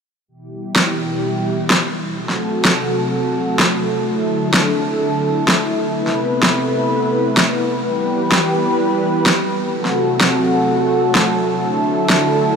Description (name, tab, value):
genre	EDM, festival progressive house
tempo	127 BPM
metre	4/4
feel	straight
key	E minor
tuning	A4 = 436 Hz
part	lush unison pad	sustained chords	0.3-12.6 s	B2 to B4	-17 LUFS	equal	chorus
part	electronic snare drum	drums	0.8-12.2 s	none	-18 LUFS	equal	overdrive, small room ambience
room	moderate huge ambient reverb, RT60 7.5 s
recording	none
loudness	-14 LUFS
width	side -6 dB against mid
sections	0.3-12.6 A section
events	filter sweep on analog synth pad 0.3-12.6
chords	0.3 Em; 2.2 F#dim; 4.1 Dadd9; 6.0 Amadd9; 7.8 Em; 9.7 F#dim; 11.6 Dadd9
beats	| 0.28 0.76 1.23 1.70 | 2.17 2.65 3.12 3.59 | 4.07 4.54 5.01 5.48 | 5.95 6.43 6.90 7.37 | 7.84 8.32 8.79 9.26 | 9.73 10.21 10.68 11.15 | 11.62 12.10